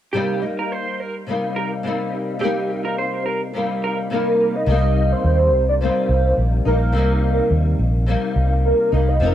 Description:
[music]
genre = indie pop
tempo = 106 BPM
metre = 4/4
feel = swing 55% on 16ths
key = C minor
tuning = A4 = 440 Hz
[part]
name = electric guitar through a small old amp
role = second line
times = 0.1-4.0 s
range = G4 to C5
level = -25 LUFS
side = right 3 dB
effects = analog chorus, tape echo
[part]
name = flamenco guitar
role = accompaniment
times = 0.1-9.3 s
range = C3 to Bb4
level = -23 LUFS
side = left 2 dB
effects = ensemble chorus, vibrato effect
[part]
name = soft octave-layered synth lead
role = melody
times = 4.1-9.3 s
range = Bb4 to Eb5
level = -20 LUFS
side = right 1 dB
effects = phaser, ensemble chorus, tape echo
[part]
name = vintage muted fingered electric bass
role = bass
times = 4.7-9.3 s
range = F1 to Eb2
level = -18 LUFS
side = equal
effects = none
[sound]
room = little or no reverb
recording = dry, close 1970s-style studio recording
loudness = -17 LUFS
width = side -11 dB against mid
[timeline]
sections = 0.1-4.7 A section; 4.7-9.3 B section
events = none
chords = 0.1 Cm7

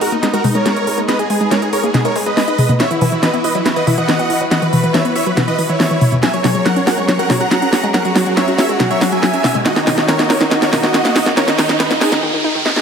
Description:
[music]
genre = uplifting trance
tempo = 140 BPM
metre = 4/4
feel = straight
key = G# minor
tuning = A4 = 440 Hz
[part]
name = big supersaw lead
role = melody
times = 0.0-12.2 s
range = D#4 to A#5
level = -17 LUFS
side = right 1 dB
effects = ping-pong delay
[part]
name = rich studio string section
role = sustained chords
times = 0.0-12.2 s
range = D#3 to B4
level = -23 LUFS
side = equal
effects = none
[part]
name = wide unison pluck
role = arpeggios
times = 0.0-12.8 s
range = E2 to G#4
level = -19 LUFS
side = left 2 dB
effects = ping-pong delay
[part]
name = solid FM bass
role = bass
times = 0.0-12.2 s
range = E1 to D#2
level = -37 LUFS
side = right 1 dB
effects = none
[part]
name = house drum kit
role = drums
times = 0.0-12.8 s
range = hi-hat, snare drum, toms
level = -17 LUFS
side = equal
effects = none
[part]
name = riser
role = sound effects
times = 9.3-12.8 s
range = none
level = -25 LUFS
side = right 1 dB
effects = none
[sound]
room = wet scoring stage reverb, RT60 1.6 s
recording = high-pass filter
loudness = -12 LUFS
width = side -7 dB against mid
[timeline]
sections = 0.0-12.8 A section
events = build-up 0.0-12.8; drum fill 0.0-12.2, 12.7; filter sweep on synth arpeggio sound 0.0-12.8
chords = 0.0 G#m; 2.8 Esus2; 6.2 F#add9; 9.7 D#m7

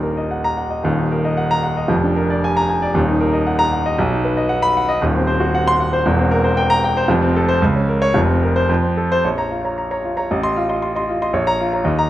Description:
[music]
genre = classical, virtuoso piano study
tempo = 116 BPM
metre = 2/4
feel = rubato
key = Eb minor, Bb minor from 5.0 s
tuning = A4 = 439 Hz
[part]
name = warm grand piano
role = solo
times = 0.0-12.1 s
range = Eb1 to C6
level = -15 LUFS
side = equal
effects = none
[sound]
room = moderate recital hall reverb, RT60 1.4 s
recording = close, detailed microphones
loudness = -15 LUFS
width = side -14 dB against mid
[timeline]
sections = 0.9-9.2 A section; 9.2-12.1 B section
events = none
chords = 0.0 Ebm; 1.9 Bb7/F; 3.0 Ebm; 4.0 B; 5.0 Cdim/Eb; 6.0 C7/E; 7.1 F; 7.6 Bbm/Db; 8.2 Fsus4; 8.7 F; 9.2 Bbm; 10.3 F7/A; 11.3 Bbm

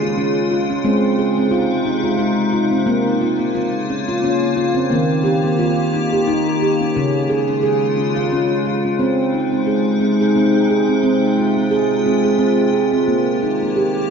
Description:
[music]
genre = world meditative, meditative tuned percussion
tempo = 88 BPM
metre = 3/4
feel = swing 56% on 16ths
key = unclear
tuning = A4 = 442 Hz
[part]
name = icy glass pad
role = sustained chords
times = 0.0-14.1 s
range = C3 to G4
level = -20 LUFS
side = left 3 dB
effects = chorus, built-in reverb
[part]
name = handpan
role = arpeggios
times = 0.0-14.1 s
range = Db3 to Ab4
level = -17 LUFS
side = right 2 dB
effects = tape echo
[sound]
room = wet echo chamber reverb, RT60 2.5 s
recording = none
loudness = -15 LUFS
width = side -6 dB against mid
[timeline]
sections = 0.0-9.0 A section; 9.0-14.1 B section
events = none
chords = 0.0 Db; 0.9 Ab; 2.9 Bbm; 4.9 Eb; 7.0 Db; 9.0 Ab; 11.0 Fm; 13.1 Eb

